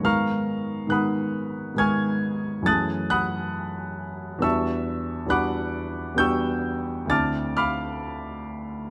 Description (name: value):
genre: classical, impressionist solo piano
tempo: 68 BPM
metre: 5/4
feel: rubato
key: unclear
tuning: A4 = 440 Hz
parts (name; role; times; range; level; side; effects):
- clear grand piano; solo; 0.0-8.9 s; D2 to A6; -26 LUFS; equal; none
room: light reverb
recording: close, detailed microphones, faint mains hum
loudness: -26 LUFS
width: mono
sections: 0.0-8.9 A section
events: none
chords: 0.0 Abm9; 2.7 Gbm9; 4.4 Em9; 7.1 Dm9